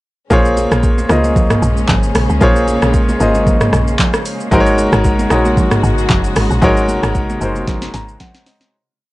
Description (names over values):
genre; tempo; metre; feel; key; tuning
amapiano; 114 BPM; 4/4; swing 55% on 16ths; Bb minor; A4 = 442 Hz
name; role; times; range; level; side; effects
warm grand piano; accompaniment; 0.3-8.8 s; Ab3 to Bb5; -16 LUFS; left 1 dB; none
warm studio string section; sustained chords; 0.3-8.7 s; C3 to Gb4; -22 LUFS; equal; sidechain pumping
woody log drum bass; bass; 0.3-8.2 s; Gb1 to Db2; -17 LUFS; equal; tube saturation
smooth R&B drum kit; drums; 0.3-8.7 s; handclaps, hi-hat, kick drum, rim click, shaker, snare drum, toms; -16 LUFS; equal; overdrive, vintage 12-bit sampler grit
congas; percussion; 0.3-8.3 s; none; -23 LUFS; right 2 dB; none
room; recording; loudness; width
digital ambience; dry, gritty hardware recording, nothing above 10.5 kHz; -11 LUFS; side -18 dB against mid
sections
0.3-8.7 drop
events
drop 0.3-8.7; fade-out 6.6-8.7; drum fill 7.7-8.7; grand piano fill 7.7-8.7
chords
0.3 Bbm9; 4.5 Ab9sus4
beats
| 0.31 0.83 1.36 1.89 | 2.41 2.94 3.47 3.99 | 4.52 5.04 5.57 6.10 | 6.62 7.15 7.68 8.20